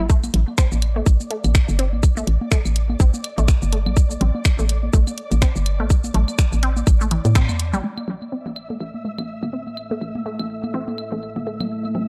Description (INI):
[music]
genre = minimal techno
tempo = 124 BPM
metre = 4/4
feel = swing 57% on 16ths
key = unclear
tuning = A4 = 439 Hz
[part]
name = resonant blip pluck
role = riff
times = 0.0-12.0 s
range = E3 to C4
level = -31 LUFS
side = equal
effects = phaser, sidechain pumping, tape echo
[part]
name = hollow knocking FM bass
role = bass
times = 0.0-12.1 s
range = G1 to A2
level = -23 LUFS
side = equal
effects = tube saturation, sidechain pumping, high-pass filter
[part]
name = electronic kick drum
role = drums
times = 0.1-7.5 s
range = none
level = -18 LUFS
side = equal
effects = overdrive
[part]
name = garage drum kit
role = drums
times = 0.1-12.1 s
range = finger snaps, hi-hat, shaker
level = -29 LUFS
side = equal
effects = overdrive, low-pass filter on hats, low-pass filter on snare, low-pass filter on perc
[part]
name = flickering grainy texture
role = texture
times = 0.5-12.1 s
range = D5 to E5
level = -39 LUFS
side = equal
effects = built-in reverb, sidechain pumping
[part]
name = congas and claves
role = percussion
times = 0.2-12.1 s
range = none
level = -31 LUFS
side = equal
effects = delay
[part]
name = deep dark ambient pad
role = texture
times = 8.9-12.1 s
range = A3 to E6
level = -33 LUFS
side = equal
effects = chorus, built-in reverb, sidechain pumping
[sound]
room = little or no reverb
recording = dark, warm production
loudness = -20 LUFS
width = mono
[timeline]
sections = 0.0-7.8 A section; 7.8-12.1 B section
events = band accent 7.4; filter sweep on synth pluck 7.8-12.1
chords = 0.0 A5